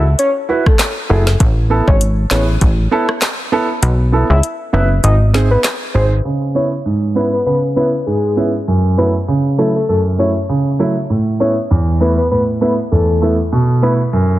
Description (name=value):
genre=dancehall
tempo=99 BPM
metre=4/4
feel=swing 56% on 16ths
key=C# minor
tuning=A4 = 440 Hz
part: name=dark concert grand piano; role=accompaniment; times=0.0-14.4 s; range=E2 to B4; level=-15 LUFS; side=right 2 dB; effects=sidechain pumping
part: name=plucky analog bass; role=bass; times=0.0-6.2 s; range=F#1 to C#2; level=-13 LUFS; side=equal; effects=none
part: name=soft octave-layered synth lead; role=melody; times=0.2-13.9 s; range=G#4 to E5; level=-19 LUFS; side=left 2 dB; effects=chorus, tape echo
part: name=afro-pop drum kit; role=drums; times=0.2-5.8 s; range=handclaps, hi-hat, kick drum, rim click, snare drum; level=-16 LUFS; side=equal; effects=none
room=light reverb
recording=dense, heavily limited modern master, low-pass filter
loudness=-12 LUFS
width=side -15 dB against mid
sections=0.0-6.3 A section; 6.3-14.4 B section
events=kick muted 3.8-6.3; filter sweep 6.3-14.4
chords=0.0 F#m7; 1.4 Asus2; 3.8 Bsus4; 5.0 G#; 6.3 C#m7; 8.7 F#m7; 11.1 Asus2; 13.5 B7sus4